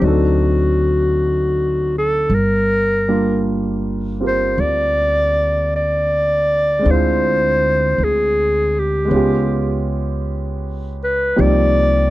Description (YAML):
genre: jazz ballad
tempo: 53 BPM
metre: 4/4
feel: swing 68% on 8ths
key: G minor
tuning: A4 = 440 Hz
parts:
  - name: clear clarinet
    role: melody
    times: 0.0-12.1 s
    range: F#4 to D5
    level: -17 LUFS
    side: equal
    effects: none
  - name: warm concert grand piano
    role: accompaniment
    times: 0.0-12.1 s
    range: F3 to Bb4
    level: -21 LUFS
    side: equal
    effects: none
  - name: upright bass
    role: bass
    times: 0.0-12.1 s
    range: G1 to D2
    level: -20 LUFS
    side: equal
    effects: none
room: little or no reverb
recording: dry, close 1970s-style studio recording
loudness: -15 LUFS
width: side -16 dB against mid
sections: 0.0-2.3 A section; 2.3-12.1 B section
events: none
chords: 0.0 D7b9; 2.3 Gm7; 6.9 Dm7b5; 9.1 C#7#11; 11.4 Cm11